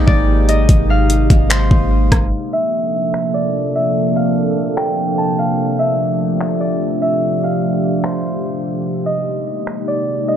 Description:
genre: hip hop, atmospheric cloud-rap.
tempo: 147 BPM.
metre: 4/4.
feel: half-time.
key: unclear.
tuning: A4 = 439 Hz.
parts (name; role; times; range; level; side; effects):
Celtic harp; melody; 0.0-10.4 s; C5 to A5; -20 LUFS; right 1 dB; tape echo.
warbly tape-like pad; sustained chords; 0.0-10.4 s; C3 to A4; -18 LUFS; equal; chorus, built-in reverb, sidechain pumping.
clean 808-style bass; bass; 0.0-2.3 s; Ab1; -15 LUFS; equal; none.
smooth R&B drum kit; drums; 0.1-9.8 s; finger snaps, hi-hat, kick drum, rim click; -14 LUFS; equal; none.
room: little or no reverb.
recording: dry, gritty hardware recording, low-pass filter.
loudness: -14 LUFS.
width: side -9 dB against mid.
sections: 0.0-2.3 A section; 2.3-10.4 B section.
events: break 2.3-8.9; filter sweep 2.3-10.4.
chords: 0.0 Abmaj9; 2.3 Bbmaj9; 5.6 F69; 8.9 Abmaj9.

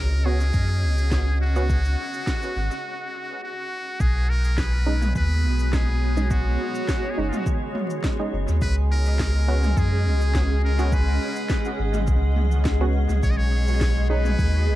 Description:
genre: ambient dub.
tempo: 104 BPM.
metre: 4/4.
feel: swing 53% on 16ths.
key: unclear.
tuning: A4 = 439 Hz.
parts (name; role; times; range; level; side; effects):
trumpet with metal mute; melody; 0.0-14.8 s; F4 to Eb5; -31 LUFS; equal; dub echo.
granular cloud pad; sustained chords; 0.0-14.8 s; Cb4 to Gb5; -31 LUFS; equal; built-in reverb.
warm sub bass; bass; 0.0-14.8 s; Gb1 to Gb2; -21 LUFS; equal; none.
filtered dub chord stab; stabs; 0.3-14.3 s; Ab3 to Gb4; -32 LUFS; right 3 dB; chorus, dub echo.
organic electronic drum kit; drums; 0.4-14.5 s; cabasa, snare drum, toms; -33 LUFS; right 1 dB; dub echo.
electronic kick drum; drums; 0.5-14.5 s; none; -25 LUFS; equal; none.
drifting glass-harmonics texture; texture; 4.8-14.8 s; Ab3 to Ab4; -34 LUFS; equal; chorus, built-in reverb.
room: digital ambience.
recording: echo-heavy mix, vinyl crackle.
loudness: -20 LUFS.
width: side -15 dB against mid.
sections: 0.0-4.0 A section; 4.0-14.8 B section.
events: filter sweep on synth stab 0.0-4.0; break 2.8-4.0.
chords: 0.0 Db7sus4; 4.0 Cb69; 8.6 Db7sus4; 13.2 Cb69.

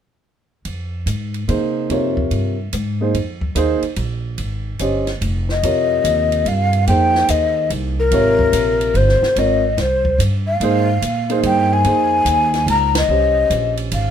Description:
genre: modal jazz.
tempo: 145 BPM.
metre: 3/4.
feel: swing 66% on 8ths.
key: F minor.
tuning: A4 = 440 Hz.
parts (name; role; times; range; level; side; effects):
compact cocktail drum kit; drums; 0.6-14.0 s; hi-hat, kick drum, ride cymbal, snare drum; -28 LUFS; equal; none.
upright bass; bass; 0.7-14.1 s; F1 to C3; -20 LUFS; right 1 dB; none.
warm concert grand piano; accompaniment; 1.5-14.1 s; C3 to Eb5; -20 LUFS; right 2 dB; none.
breathy mellow jazz flute; melody; 5.5-14.1 s; Bb4 to Bb5; -16 LUFS; left 3 dB; none.
room: moderate studio reverb, RT60 0.6 s.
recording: minimal, uncompressed stereo recording.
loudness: -15 LUFS.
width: side -8 dB against mid.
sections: 0.7-5.6 A section; 5.6-14.1 B section.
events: band accent 12.9.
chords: 0.7 Fm11.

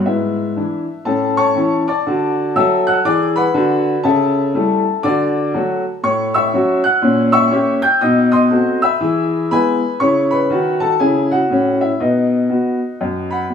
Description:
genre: jazz, stride piano.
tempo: 121 BPM.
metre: 4/4.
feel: swing 62% on 8ths.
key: unclear.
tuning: A4 = 440 Hz.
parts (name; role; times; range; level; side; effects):
clear baby grand piano; solo; 0.0-13.5 s; F#2 to G6; -14 LUFS; left 1 dB; none.
room: wet echo chamber reverb, RT60 1.6 s.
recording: small room ambience.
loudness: -14 LUFS.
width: side -7 dB against mid.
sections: 0.0-13.5 A section.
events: none.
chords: 0.1 E7/G#; 1.1 A; 2.1 D; 4.0 A7/C#; 5.0 D; 6.0 F#m/A; 7.0 A#dim7; 8.0 B7b9; 9.0 E; 10.0 C#m; 12.0 B.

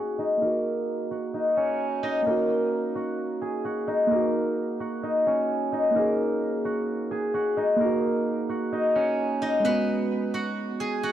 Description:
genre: hip hop.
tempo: 130 BPM.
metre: 4/4.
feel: half-time.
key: Eb minor.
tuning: A4 = 440 Hz.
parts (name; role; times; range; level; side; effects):
steel-string zither; melody; 0.0-11.1 s; Bb3 to Ab5; -25 LUFS; left 1 dB; low-pass filter.
muted felt-like synth keys; accompaniment; 0.0-11.1 s; Ab3 to Ab4; -29 LUFS; right 3 dB; chorus, low-pass filter.
room: light reverb, small room ambience.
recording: dry, gritty hardware recording, low-pass filter.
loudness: -23 LUFS.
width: side -11 dB against mid.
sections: 0.0-2.3 A section; 2.3-11.1 B section.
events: filter sweep 0.0-2.3, 2.3-9.6.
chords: 0.0 Ebm; 9.6 Abm7.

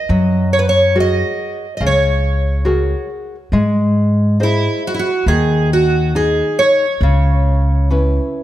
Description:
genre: fado-style ballad.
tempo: 69 BPM.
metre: 4/4.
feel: rubato.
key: unclear.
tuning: A4 = 440 Hz.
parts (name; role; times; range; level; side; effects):
fingerpicked twelve-string acoustic guitar; melody; 0.0-8.4 s; E4 to D#5; -17 LUFS; right 2 dB; none.
nylon-string guitar; accompaniment; 0.1-8.4 s; C#3 to D#5; -18 LUFS; left 1 dB; none.
upright bass; bass; 0.1-8.2 s; C#2 to G#2; -16 LUFS; equal; none.
room: moderate recital hall reverb, RT60 1.7 s.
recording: none.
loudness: -13 LUFS.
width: side -13 dB against mid.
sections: 0.0-8.4 A section.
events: none.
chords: 0.1 F#add9; 3.5 G#; 7.0 C#m7.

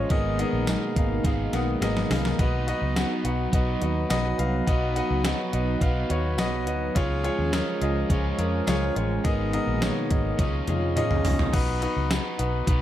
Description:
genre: 1980s-style pop.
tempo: 105 BPM.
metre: 4/4.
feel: straight.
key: unclear.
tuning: A4 = 440 Hz.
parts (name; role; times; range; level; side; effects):
crunchy overdriven guitar; accompaniment; 0.0-12.8 s; G#2 to C#4; -35 LUFS; right 4 dB; wide subtle chorus.
warm concert grand piano; accompaniment; 0.0-12.8 s; B3 to F#5; -28 LUFS; left 2 dB; none.
sweeping resonant pad; sustained chords; 0.0-11.5 s; B2 to E#4; -31 LUFS; right 2 dB; chorus.
vintage muted fingered electric bass; bass; 0.0-12.8 s; G#1 to E#2; -28 LUFS; equal; none.
gated 80s digital drum machine; drums; 0.1-12.8 s; crash cymbal, hi-hat, kick drum, snare drum, tambourine, toms; -26 LUFS; equal; gated reverb, gated reverb snare, overdrive.
room: light reverb.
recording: none.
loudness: -22 LUFS.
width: side -12 dB against mid.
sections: 0.0-11.5 A section; 11.5-12.8 A section.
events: drum fill 1.2-2.4, 10.4-11.5.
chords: 0.1 G#madd9; 2.4 B; 7.0 C#; 9.2 G#madd9; 10.4 C#add9; 11.5 B.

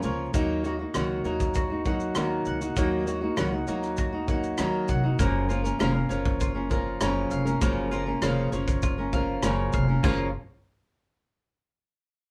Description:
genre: acoustic pop.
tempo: 99 BPM.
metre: 4/4.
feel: straight.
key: F# major.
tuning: A4 = 441 Hz.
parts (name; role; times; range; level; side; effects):
flamenco guitar; accompaniment; 0.0-10.3 s; F#2 to A#4; -30 LUFS; equal; none.
mandolin; arpeggios; 0.0-10.3 s; A#3 to F#5; -38 LUFS; equal; none.
upright bass; bass; 0.0-10.3 s; E#1 to D#2; -33 LUFS; equal; none.
loose indie drum kit; drums; 0.0-10.2 s; crash cymbal, kick drum, rim click, shaker, toms; -31 LUFS; equal; none.
room: moderate studio reverb, RT60 0.5 s.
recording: band playing live in one room.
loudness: -26 LUFS.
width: mono.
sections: 0.3-10.0 A section; 10.0-12.3 B section.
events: none.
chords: 0.3 D#m; 5.2 F#maj7.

